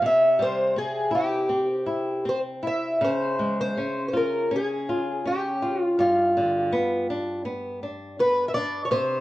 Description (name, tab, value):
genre	fado-style ballad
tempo	82 BPM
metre	4/4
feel	rubato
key	unclear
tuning	A4 = 439 Hz
part	fingerpicked twelve-string acoustic guitar	melody	0.0-9.2 s	F4 to E5	-22 LUFS	equal	none
part	flamenco guitar	accompaniment	0.0-9.2 s	G2 to F4	-29 LUFS	left 1 dB	none
room	moderate studio reverb, RT60 0.5 s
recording	worn, warbling old tape, cassette tape, warbly pitch drift, lossy compression artefacts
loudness	-22 LUFS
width	side -16 dB against mid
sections	0.0-9.2 A section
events	none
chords	0.0 C; 3.0 Db; 6.0 G7